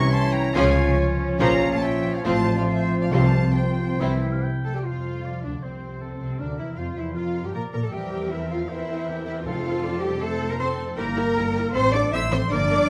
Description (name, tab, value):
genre	classical, dramatic, fast romantic movement for symphony orchestra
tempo	135-158 BPM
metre	4/4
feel	straight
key	F major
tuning	A4 = 438 Hz
part	warm symphonic violin section	melody	0.0-12.8 s	C4 to Db6	-38 LUFS	equal	none
part	bright silver concert flute	second line	0.0-12.9 s	C5 to E6	-36 LUFS	equal	none
part	warm clarinet	second line	0.0-4.7 s	E4 to F4	-32 LUFS	equal	none
part	warm oboe	second line	0.0-12.9 s	G4 to G5	-38 LUFS	equal	none
part	mellow French horn section	sustained chords	0.0-12.9 s	C3 to E4	-31 LUFS	equal	none
part	concert harp	arpeggios	0.0-12.9 s	E2 to A4	-32 LUFS	equal	none
part	rich symphonic double bass section	bass	0.0-12.9 s	G1 to Bb2	-31 LUFS	equal	none
part	warm symphonic cello section	bass	0.0-12.9 s	A2 to E5	-30 LUFS	equal	none
part	dark symphonic violin section	second line	0.5-12.9 s	E4 to E6	-38 LUFS	equal	none
part	bright symphonic viola section	accompaniment	0.6-12.8 s	F3 to Bb4	-34 LUFS	equal	none
part	timpani	percussion	3.1-3.7, 9.5-10.0 s	F2 to C3	-30 LUFS	equal	none
room	moderate recital hall reverb, RT60 1.4 s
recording	close, detailed microphones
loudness	-24 LUFS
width	mono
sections	0.0-4.9 A section; 4.9-12.9 B section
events	none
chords	0.0 C7b9; 0.5 Db; 1.4 Bbm; 2.2 F/A; 3.1 Csus4; 4.0 C; 4.9 F; 6.4 Gm7/D; 7.9 C7/E; 9.5 F; 11.0 Edim/G; 11.7 F/A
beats	0.12 0.55 0.97 | 1.39 1.82 2.25 2.68 | 3.12 3.56 4.00 4.43 | 4.86 5.25 5.63 6.02 | 6.40 6.78 7.17 7.55 | 7.93 8.31 8.70 9.08 | 9.46 9.84 10.22 10.60 | 10.98 11.36 11.75 12.13 | 12.52